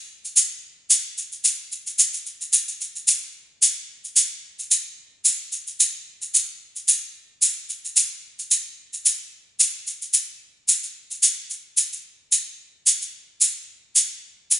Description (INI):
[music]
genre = west african traditional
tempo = 110 BPM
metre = 4/4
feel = swing 55% on 16ths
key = none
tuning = none
[part]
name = egg shaker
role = percussion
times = 0.2-14.6 s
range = none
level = -17 LUFS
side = equal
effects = none
[sound]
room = light reverb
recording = nothing above 10.6 kHz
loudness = -19 LUFS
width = side -13 dB against mid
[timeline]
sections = 0.0-3.6 A section; 3.6-12.3 B section; 12.3-14.6 C section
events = none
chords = none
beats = 0.36 0.91 | 1.45 1.99 2.54 3.08 | 3.62 4.17 4.71 5.25 | 5.80 6.34 6.88 7.42 | 7.97 8.51 9.05 9.60 | 10.14 10.69 11.23 11.78 | 12.32 12.86 13.41 13.96 | 14.50